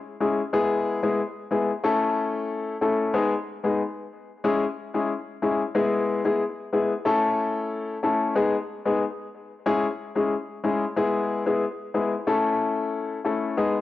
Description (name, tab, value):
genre	dancehall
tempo	92 BPM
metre	4/4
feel	straight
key	E major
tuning	A4 = 439 Hz
part	warm grand piano	solo	0.2-13.8 s	G#3 to A4	-23 LUFS	left 3 dB	tape echo
room	light reverb, studio reverb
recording	home recording on cassette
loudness	-23 LUFS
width	side -14 dB against mid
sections	0.0-11.0 A section; 11.0-13.8 B section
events	none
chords	0.0 C#m; 0.5 E; 1.8 A; 3.1 G#m; 4.4 C#m; 5.8 E; 7.1 A; 8.4 G#m; 9.7 C#m; 11.0 E; 12.3 A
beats	| 0.53 1.19 1.84 2.49 | 3.14 3.79 4.45 5.10 | 5.75 6.40 7.05 7.71 | 8.36 9.01 9.66 10.32 | 10.97 11.62 12.27 12.92 | 13.58